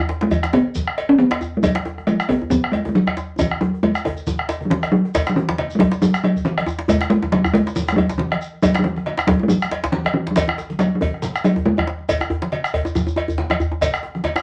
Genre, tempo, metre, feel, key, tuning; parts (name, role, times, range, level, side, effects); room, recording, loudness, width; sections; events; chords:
west african traditional, West African drum ensemble; 138 BPM; 4/4; swing 55% on 16ths; E major pentatonic; A4 = 442 Hz
talking drum; melody; 0.0-12.0 s; E3 to C#4; -20 LUFS; equal
djembe; percussion; 0.1-14.2 s; -37 LUFS; equal
djembe; percussion; 0.1-14.4 s; -27 LUFS; equal
bombo; percussion; 0.2-14.4 s; -27 LUFS; equal
congas; percussion; 0.3-14.4 s; -31 LUFS; equal
cowbell; percussion; 0.3-14.4 s; -28 LUFS; equal
shekere; percussion; 0.3-14.4 s; -38 LUFS; equal
moderate studio ambience, RT60 0.5 s; -20 LUFS; mono
0.0-5.1 A section; 5.1-14.4 B section
drum fill 3.4-5.1